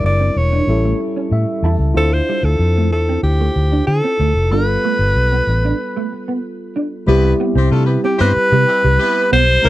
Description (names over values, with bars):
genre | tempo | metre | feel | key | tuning
pop | 94 BPM | 4/4 | straight | C major | A4 = 442 Hz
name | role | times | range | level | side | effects
breathy alto saxophone | melody | 0.0-9.7 s | G4 to D5 | -17 LUFS | equal | none
tine electric piano | accompaniment | 0.0-9.7 s | G3 to A5 | -21 LUFS | equal | overdrive, lush chorus
vintage muted fingered electric bass | bass | 0.0-9.7 s | E1 to D3 | -15 LUFS | equal | none
mellow electric guitar | riff | 0.2-9.4 s | G3 to E4 | -23 LUFS | right 4 dB | ensemble chorus
warm horn section | second line | 7.1-9.7 s | G3 to C5 | -22 LUFS | left 2 dB | none
room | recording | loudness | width
little or no reverb | dry, close 1970s-style studio recording | -13 LUFS | side -15 dB against mid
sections
0.0-7.1 A section; 7.1-9.7 B section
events
tine electric piano fill 1.0-2.0; break 5.8-7.1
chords
0.0 Em7b5; 0.7 A7; 2.0 Dm9; 4.5 G9; 7.1 Cmaj7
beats
0.04 0.68 1.32 | 1.96 2.60 3.24 3.88 | 4.52 5.16 5.80 6.44 | 7.08 7.72 8.36 9.01 | 9.64